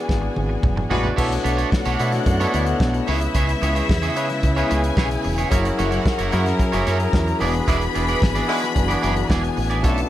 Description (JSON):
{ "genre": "disco", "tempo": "111 BPM", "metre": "4/4", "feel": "straight", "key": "B dorian", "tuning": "A4 = 437 Hz", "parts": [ { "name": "rich studio string section", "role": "second line", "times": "0.0-10.1 s", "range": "E4 to B5", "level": "-28 LUFS", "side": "left 3 dB", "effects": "none" }, { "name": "barky tine electric piano", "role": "accompaniment", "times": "0.0-10.1 s", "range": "B2 to D5", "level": "-25 LUFS", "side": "left 2 dB", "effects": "overdrive, slow stereo tremolo" }, { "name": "clear studio string section", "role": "sustained chords", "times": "0.0-10.1 s", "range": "C#3 to A#4", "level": "-28 LUFS", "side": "left 1 dB", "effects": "none" }, { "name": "semi-hollow electric guitar", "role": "accompaniment", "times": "0.1-10.0 s", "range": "G#3 to D5", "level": "-27 LUFS", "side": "right 7 dB", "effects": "wide subtle chorus" }, { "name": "fingered electric bass with an envelope filter", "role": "bass", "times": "0.1-10.0 s", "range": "E1 to B2", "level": "-23 LUFS", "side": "equal", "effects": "none" }, { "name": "warm soul drum kit", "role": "drums", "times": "0.1-10.1 s", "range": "crash cymbal, hi-hat, kick drum, snare drum, toms", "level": "-22 LUFS", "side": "equal", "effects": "none" }, { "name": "warm horn section", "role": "stabs", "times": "0.9-1.1, 7.7-8.7 s", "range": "G#3 to B4", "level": "-27 LUFS", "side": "left 1 dB", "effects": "none" } ], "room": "small room ambience", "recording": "none", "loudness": "-18 LUFS", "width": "side -13 dB against mid", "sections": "0.0-1.2 A section; 1.2-10.1 B section", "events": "band accent 0.0-1.2, 7.7-9.8; drum fill 0.1-1.2", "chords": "0.0 E9; 1.2 Bm11; 3.1 C#m7; 5.5 F#7; 7.4 E7" }